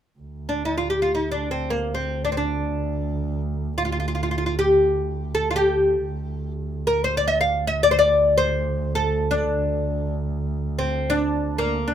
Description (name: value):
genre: arabic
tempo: free time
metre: none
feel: none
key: D maqam bayati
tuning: A4 = 439 Hz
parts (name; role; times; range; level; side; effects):
- muted double bass; drone; 0.2-11.9 s; D2; -27 LUFS; right 2 dB; none
- oud; melody; 0.5-11.9 s; Bb3 to F5; -21 LUFS; left 1 dB; none
room: light reverb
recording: minimal, uncompressed stereo recording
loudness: -20 LUFS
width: side -9 dB against mid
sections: 0.2-11.9 A section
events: none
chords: none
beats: free time